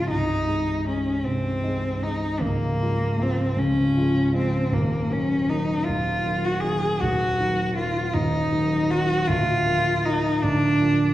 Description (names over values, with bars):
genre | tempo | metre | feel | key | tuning
classical, romantic duo for cello and grand piano | 52 BPM (dotted quarters) | 12/8 | rubato | unclear | A4 = 440 Hz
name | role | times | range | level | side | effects
rich cello | melody | 0.0-11.1 s | Bb3 to Ab4 | -23 LUFS | equal | none
warm concert grand piano | accompaniment | 0.0-11.1 s | C1 to F4 | -24 LUFS | equal | none
room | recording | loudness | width
wet recital hall reverb, RT60 1.6 s | heard from further back in the room | -21 LUFS | side -14 dB against mid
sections
0.0-11.1 A section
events
none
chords
0.1 Ab/C; 2.4 Db; 4.7 Ebm; 9.3 Bb/D